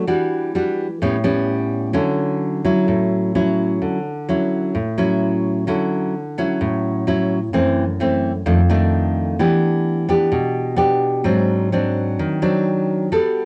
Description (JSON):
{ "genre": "bossa nova", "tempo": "129 BPM", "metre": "4/4", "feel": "straight", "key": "D major", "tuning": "A4 = 444 Hz", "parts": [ { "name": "nylon-string guitar", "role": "solo", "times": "0.0-13.4 s", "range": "F2 to A4", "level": "-19 LUFS", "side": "equal", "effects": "cassette tape" } ], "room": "wet small room reverb, RT60 0.5 s", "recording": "home recording on cassette", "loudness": "-19 LUFS", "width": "mono", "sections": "0.0-5.7 A section; 5.7-13.4 B section", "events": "none", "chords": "0.1 Em9; 1.0 A9; 1.9 Dmaj9; 7.5 F#m7b5; 8.5 F6; 9.4 Em7; 11.3 G#7#11" }